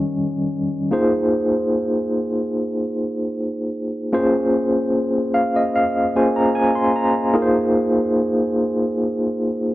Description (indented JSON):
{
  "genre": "soul",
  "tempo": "75 BPM",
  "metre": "4/4",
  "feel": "straight",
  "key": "Ab major",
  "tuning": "A4 = 438 Hz",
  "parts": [
    { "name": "barky tine electric piano", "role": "solo", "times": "0.0-9.7 s", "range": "Eb3 to C6", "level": "-18 LUFS", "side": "equal", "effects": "overdrive, medium tremolo, analog delay" }
  ],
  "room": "light reverb",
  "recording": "none",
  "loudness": "-17 LUFS",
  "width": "side -16 dB against mid",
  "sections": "0.9-9.7 A section",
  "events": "tine electric piano fill 4.9-7.4",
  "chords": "0.0 Eb7; 0.9 Ab69; 4.1 Bbm9; 7.4 Ab69"
}